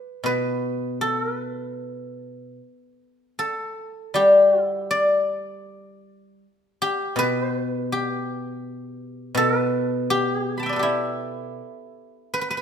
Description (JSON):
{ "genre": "chinese traditional, Chinese solo plucked strings", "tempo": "80 BPM", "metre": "4/4", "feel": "uneven beats, rubato", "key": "G gong mode", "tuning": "A4 = 441 Hz", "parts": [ { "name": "guzheng", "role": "solo", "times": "0.0-12.6 s", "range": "B2 to B5", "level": "-21 LUFS", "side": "left 1 dB", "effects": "none" } ], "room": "light reverb", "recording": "minimal, uncompressed stereo recording", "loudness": "-20 LUFS", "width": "side -8 dB against mid", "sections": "0.0-12.6 A section", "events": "none", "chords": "none", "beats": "0.27 1.02 1.80 | 2.60 3.38 4.15 4.92 | 5.69 6.44 7.17 7.90 | 8.63 9.36 10.09 10.84 | 11.58 12.35" }